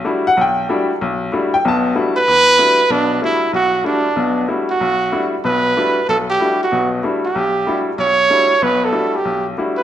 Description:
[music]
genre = jazz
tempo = 189 BPM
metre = 4/4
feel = swing 64% on 8ths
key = E dorian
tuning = A4 = 440 Hz
[part]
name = bright upright piano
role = accompaniment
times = 0.0-9.8 s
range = B1 to A5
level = -18 LUFS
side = left 2 dB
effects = none
[part]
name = clear trumpet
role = melody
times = 2.2-9.8 s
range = D4 to C#5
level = -14 LUFS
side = right 2 dB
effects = none
[sound]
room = wet large studio reverb, RT60 1.3 s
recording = none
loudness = -14 LUFS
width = side -11 dB against mid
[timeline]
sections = 0.0-2.3 A section; 2.3-9.8 B section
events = none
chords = 0.0 Em11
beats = 0.04 0.36 0.68 | 0.99 1.31 1.63 1.95 | 2.27 2.58 2.90 3.22 | 3.54 3.85 4.17 4.49 | 4.80 5.12 5.44 5.76 | 6.08 6.39 6.71 7.03 | 7.34 7.66 7.98 8.30 | 8.62 8.94 9.25 9.57

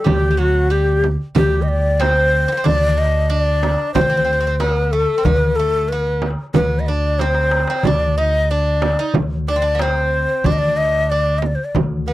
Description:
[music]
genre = Turkish makam ensemble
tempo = 92 BPM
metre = 4/4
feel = straight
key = D makam hicaz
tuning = A4 = 440 Hz
[part]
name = breathy bright ney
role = melody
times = 0.0-12.1 s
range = F#4 to Eb5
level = -18 LUFS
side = left 2 dB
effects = none
[part]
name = Greek bouzouki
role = second line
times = 0.0-12.1 s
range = F#3 to Eb4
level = -26 LUFS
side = right 5 dB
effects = none
[part]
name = upright bass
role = bass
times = 0.1-12.1 s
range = D2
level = -19 LUFS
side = equal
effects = none
[part]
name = darbuka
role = percussion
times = 0.1-11.9 s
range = none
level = -22 LUFS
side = left 2 dB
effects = none
[part]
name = frame drum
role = percussion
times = 0.1-11.9 s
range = none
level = -22 LUFS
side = right 7 dB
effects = none
[sound]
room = little or no reverb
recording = dry, close 1970s-style studio recording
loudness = -15 LUFS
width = side -16 dB against mid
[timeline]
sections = 0.0-12.1 A section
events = drum fill 7.2-7.8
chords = none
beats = | 0.05 0.70 1.35 2.00 | 2.65 3.30 3.95 4.60 | 5.25 5.90 6.55 7.20 | 7.85 8.50 9.15 9.80 | 10.45 11.10 11.75

